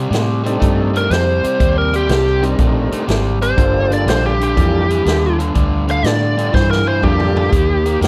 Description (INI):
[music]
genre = electric blues shuffle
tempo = 122 BPM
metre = 4/4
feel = swing 68% on 8ths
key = G minor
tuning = A4 = 440 Hz
[part]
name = overdriven electric guitar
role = riff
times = 0.0-8.1 s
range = G2 to Bb3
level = -23 LUFS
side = equal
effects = none
[part]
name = vintage muted fingered electric bass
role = bass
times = 0.0-8.1 s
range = G1 to C3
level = -20 LUFS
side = equal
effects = none
[part]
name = swinging big-band drum kit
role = drums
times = 0.1-8.1 s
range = hi-hat, kick drum, snare drum, toms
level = -21 LUFS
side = equal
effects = none
[part]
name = tonewheel organ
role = accompaniment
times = 0.5-7.5 s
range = G3 to Bb4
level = -25 LUFS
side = equal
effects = slow rotary speaker, overdrive
[part]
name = biting lead guitar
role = melody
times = 1.0-8.0 s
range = G4 to F5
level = -20 LUFS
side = equal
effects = overdrive
[sound]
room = studio ambience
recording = none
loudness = -15 LUFS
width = mono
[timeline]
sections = 0.0-8.1 A section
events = lead electric guitar solo 0.0-8.1; drum fill 6.5-7.5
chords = 0.0 Cm7; 3.6 Gm7; 7.5 Eb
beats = 0.12 0.61 1.10 | 1.60 2.09 2.59 3.08 | 3.58 4.07 4.56 5.06 | 5.55 6.04 6.54 7.03 | 7.53 8.02